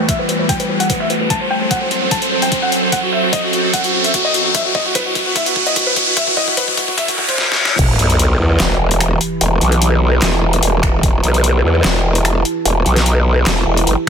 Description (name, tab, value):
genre	heavy wobble dubstep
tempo	148 BPM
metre	4/4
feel	half-time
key	E minor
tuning	A4 = 441 Hz
part	felt-muted upright piano	melody	0.0-7.3 s	F#4 to A5	-20 LUFS	left 1 dB	low-pass filter, digital delay
part	evolving wavetable pad	sustained chords	0.0-14.1 s	E2 to B5	-21 LUFS	right 2 dB	chorus, built-in reverb, sidechain pumping
part	riser, reverse cymbal and sub drop	sound effects	0.0-9.4 s	none	-17 LUFS	equal	none
part	dubstep drum kit	drums	0.1-14.0 s	crash cymbal, finger snaps, handclaps, hi-hat, snare drum	-19 LUFS	left 2 dB	overdrive
part	electronic kick drum	drums	0.1-7.9, 10.8-11.1 s	none	-20 LUFS	equal	overdrive
part	growl bass	bass	7.8-14.0 s	E1 to E2	-13 LUFS	equal	chorus, overdrive
room	light reverb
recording	dense, heavily limited modern master, high-pass filter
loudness	-12 LUFS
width	side -7 dB against mid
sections	0.0-7.8 A section; 7.8-14.1 B section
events	build-up 0.0-7.8; riser 0.0-7.4; filter sweep on felt piano 0.0-7.8; filter sweep 0.0-7.8; drum fill 1.3-7.4, 7.4-7.8; reverse cymbal 7.0-7.8; drop 7.8-14.1; impact 7.8-9.4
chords	0.0 Emadd9; 1.3 F#dim; 4.5 Bsus4; 7.8 Em